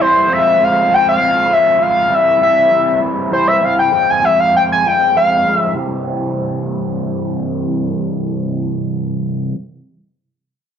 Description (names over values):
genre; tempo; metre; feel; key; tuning
rock; 66 BPM (dotted quarters); 6/8; straight; unclear; A4 = 440 Hz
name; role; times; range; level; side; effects
overdriven synth lead; melody; 0.0-5.7 s; C5 to Ab5; -11 LUFS; left 1 dB; none
crunchy overdriven guitar; riff; 0.0-9.6 s; C3 to G4; -18 LUFS; right 1 dB; phaser, low-pass filter
room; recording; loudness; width
moderate stone room reverb, RT60 1.0 s; rough rehearsal-room recording, nothing above 7.5 kHz; -12 LUFS; side -8 dB against mid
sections
0.0-5.8 A section; 5.8-9.4 B section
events
analog synth lead solo 0.0-5.8; filter sweep on overdriven electric guitar 0.0-5.8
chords
0.3 Fm; 2.1 C; 3.9 Fm; 5.8 C